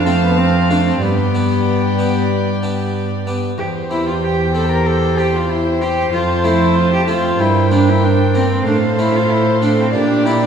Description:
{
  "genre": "classical, baroque-style concerto movement with solo episodes",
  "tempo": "94 BPM",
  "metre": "4/4",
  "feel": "straight",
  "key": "F major from 3.6 s",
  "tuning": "A4 = 440 Hz",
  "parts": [
    { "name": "warm cello", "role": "melody", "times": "0.0-10.5 s", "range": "B3 to Bb4", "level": "-18 LUFS", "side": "equal", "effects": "none" },
    { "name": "warm chamber violin section", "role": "melody", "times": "0.0-10.5 s", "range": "F5 to A5", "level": "-28 LUFS", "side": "left 2 dB", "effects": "none" },
    { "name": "warm chamber violin section", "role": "second line", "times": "0.0-10.5 s", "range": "C5 to F5", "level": "-22 LUFS", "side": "left 4 dB", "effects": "none" },
    { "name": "dark chamber viola section", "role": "accompaniment", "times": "0.0-10.5 s", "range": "G4 to C5", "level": "-24 LUFS", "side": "right 2 dB", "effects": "none" },
    { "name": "harpsichord", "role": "accompaniment", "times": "0.0-10.5 s", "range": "E2 to F4", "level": "-24 LUFS", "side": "left 1 dB", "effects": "none" },
    { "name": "rich chamber cello section", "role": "bass", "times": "0.0-10.5 s", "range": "E2 to Bb2", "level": "-17 LUFS", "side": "right 3 dB", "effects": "none" }
  ],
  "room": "wet scoring stage reverb, RT60 1.9 s",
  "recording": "heard from further back in the room",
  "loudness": "-13 LUFS",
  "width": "side -7 dB against mid",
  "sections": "0.0-10.5 A section",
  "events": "none",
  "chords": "0.0 F; 1.0 G; 3.6 C/E; 6.1 F; 7.4 C5/G; 8.7 F/A; 9.9 Gm/Bb",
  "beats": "0.38 | 1.01 1.66 2.30 2.94 | 3.58 4.22 4.86 5.49 | 6.13 6.76 7.40 8.03 | 8.66 9.30 9.93"
}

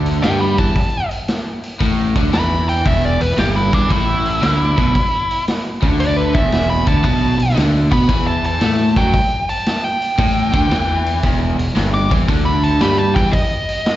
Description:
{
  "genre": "blues rock power trio and southern rock",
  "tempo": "114 BPM",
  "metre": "4/4",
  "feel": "swing 67% on 8ths",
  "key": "unclear",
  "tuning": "A4 = 440 Hz",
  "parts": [
    { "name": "overdriven electric guitar", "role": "riff", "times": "0.0-13.3 s", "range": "E2 to B3", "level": "-18 LUFS", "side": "equal", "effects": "slapback echo" },
    { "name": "fuzz fingered electric bass", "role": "bass", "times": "0.0-13.3 s", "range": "E1 to B2", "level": "-19 LUFS", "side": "equal", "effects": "overdrive" },
    { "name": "vintage drum kit", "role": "drums", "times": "0.1-14.0 s", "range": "hi-hat, kick drum, snare drum", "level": "-19 LUFS", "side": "equal", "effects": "none" },
    { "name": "nasal lead guitar with a parked wah", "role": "melody", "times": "0.2-14.0 s", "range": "D4 to D6", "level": "-20 LUFS", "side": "equal", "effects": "overdrive, slapback echo, analog delay" }
  ],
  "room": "light reverb",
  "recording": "live gig heard through the venue's PA, recital hall reverb, nothing above 7.6 kHz",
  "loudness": "-14 LUFS",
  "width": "side -14 dB against mid",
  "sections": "0.0-14.0 A section",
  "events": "lead electric guitar solo 0.0-14.0",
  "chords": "0.0 A5; 2.9 E5; 7.0 B5; 9.1 A5; 11.2 Em; 12.3 G69/D; 13.3 N.C.",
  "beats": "0.23 | 0.76 1.28 1.81 2.33 | 2.85 3.38 3.90 4.43 | 4.95 5.48 6.00 6.52 | 7.05 7.57 8.10 8.62 | 9.14 9.66 10.19 10.71 | 11.24 11.76 12.28 12.81 | 13.33 13.86"
}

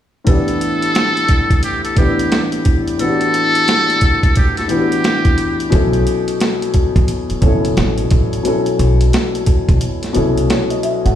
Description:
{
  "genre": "hip hop, boom-bap hip-hop",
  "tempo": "88 BPM",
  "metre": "4/4",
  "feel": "swing 63% on 16ths",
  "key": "unclear",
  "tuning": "A4 = 440 Hz",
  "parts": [
    { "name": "dark upright piano", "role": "accompaniment", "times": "0.2-11.2 s", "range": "A2 to F#5", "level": "-17 LUFS", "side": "left 2 dB", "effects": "high-pass filter, low-pass filter" },
    { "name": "trumpet with metal mute", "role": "melody", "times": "0.3-5.7 s", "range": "G4 to A4", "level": "-18 LUFS", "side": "equal", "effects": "high-pass filter, low-pass filter, ping-pong delay" },
    { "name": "boom bap sampler-style drum kit", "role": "drums", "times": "0.3-11.2 s", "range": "hi-hat, kick drum, snare drum", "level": "-16 LUFS", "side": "right 1 dB", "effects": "none" },
    { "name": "upright bass", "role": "bass", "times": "5.7-11.2 s", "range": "F#1 to C2", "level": "-17 LUFS", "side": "equal", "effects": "none" }
  ],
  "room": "light reverb",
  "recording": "played on a big sound system in a bare room, stone room reverb",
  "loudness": "-13 LUFS",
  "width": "side -10 dB against mid",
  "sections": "0.3-11.2 A section",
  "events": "break 9.8-11.2",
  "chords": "0.3 A9sus4; 5.7 B9sus4",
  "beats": "| 0.27 0.95 1.64 2.32 | 3.00 3.68 4.36 5.04 | 5.73 6.41 7.09 7.77 | 8.45 9.14 9.82 10.50"
}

